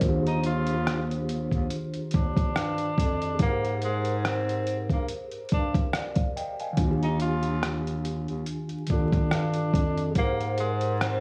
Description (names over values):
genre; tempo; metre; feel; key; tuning
lo-fi hip hop; 71 BPM; 4/4; swing 57% on 16ths; Ab lydian; A4 = 445 Hz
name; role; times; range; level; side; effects
mellow tine electric piano; accompaniment; 0.0-11.2 s; Eb3 to Ab5; -32 LUFS; equal; low-pass filter
warm bass clarinet; bass; 0.0-11.2 s; Eb2 to Ab2; -33 LUFS; equal; none
trip hop sampler-style drum kit; drums; 0.0-11.2 s; hi-hat, kick drum, rim click; -29 LUFS; equal; none
warm tenor saxophone; melody; 0.3-11.2 s; Ab3 to F4; -34 LUFS; equal; low-pass filter, plate reverb
room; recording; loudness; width
light reverb; vinyl crackle, studio reverb; -27 LUFS; mono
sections
0.0-3.4 A section; 3.4-11.2 B section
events
none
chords
0.0 Ebmaj9; 3.4 Abmaj9; 6.8 Ebmaj9; 10.2 Abmaj9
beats
| 0.01 0.86 1.70 2.55 | 3.39 4.24 5.08 5.93 | 6.77 7.62 8.46 9.31 | 10.15 11.00